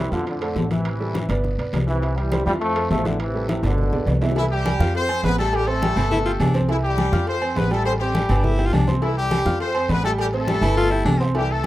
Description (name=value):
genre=latin, salsa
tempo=206 BPM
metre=4/4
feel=straight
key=unclear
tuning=A4 = 438 Hz
part: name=clear trombone section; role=melody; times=0.0-4.2 s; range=A2 to A3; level=-25 LUFS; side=equal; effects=none
part: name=bright upright piano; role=accompaniment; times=0.0-11.7 s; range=E3 to G6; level=-27 LUFS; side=right 2 dB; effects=none
part: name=upright bass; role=bass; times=0.0-11.7 s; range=G1 to F2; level=-23 LUFS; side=equal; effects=none
part: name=congas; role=percussion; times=0.1-11.7 s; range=none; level=-26 LUFS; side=left 2 dB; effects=none
part: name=guiro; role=percussion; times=0.1-11.7 s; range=none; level=-41 LUFS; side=left 1 dB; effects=none
part: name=bongos and cowbell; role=percussion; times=0.3-11.7 s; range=none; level=-33 LUFS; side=left 6 dB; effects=none
part: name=timbales and agogo bells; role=percussion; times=0.3-11.7 s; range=none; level=-30 LUFS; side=right 5 dB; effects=none
part: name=brilliant horn section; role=melody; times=4.4-11.7 s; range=E3 to C5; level=-24 LUFS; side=left 1 dB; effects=none
part: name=growling baritone saxophone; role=second line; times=6.0-11.3 s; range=C4 to F4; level=-25 LUFS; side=left 2 dB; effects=none
room=light reverb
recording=rough home demo mix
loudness=-18 LUFS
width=side -15 dB against mid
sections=0.0-4.4 A section; 4.4-11.7 B section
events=drum fill 3.6-4.4, 8.6-9.0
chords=0.3 F; 0.9 Am7; 1.4 G; 2.0 C; 2.6 F; 3.2 Am7; 3.8 G; 4.4 C; 4.9 F; 5.5 G; 6.7 C; 7.3 F; 7.9 Am7; 8.4 G; 9.0 C; 9.6 F; 10.2 G